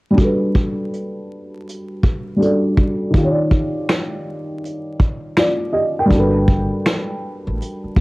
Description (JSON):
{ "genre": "lo-fi hip hop", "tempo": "81 BPM", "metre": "4/4", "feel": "swing 65% on 16ths", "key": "G major", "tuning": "A4 = 440 Hz", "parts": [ { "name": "felt-muted upright piano", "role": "accompaniment", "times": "0.1-8.0 s", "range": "Eb3 to G5", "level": "-19 LUFS", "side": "equal", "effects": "low-pass filter, cassette tape" }, { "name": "vintage brush drum kit", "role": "drums", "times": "0.2-8.0 s", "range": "finger snaps, hi-hat, kick drum, snare drum", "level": "-17 LUFS", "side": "equal", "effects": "cassette tape" }, { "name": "upright bass", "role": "bass", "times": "6.1-8.0 s", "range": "F#1 to A1", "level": "-22 LUFS", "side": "equal", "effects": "none" } ], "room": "light reverb", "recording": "home recording on cassette, vinyl crackle", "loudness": "-16 LUFS", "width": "side -22 dB against mid", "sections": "0.2-8.0 A section", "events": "filter sweep on felt piano 0.2-8.0", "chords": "0.2 Gmaj9; 3.1 Ebmaj9; 6.1 Gmaj9" }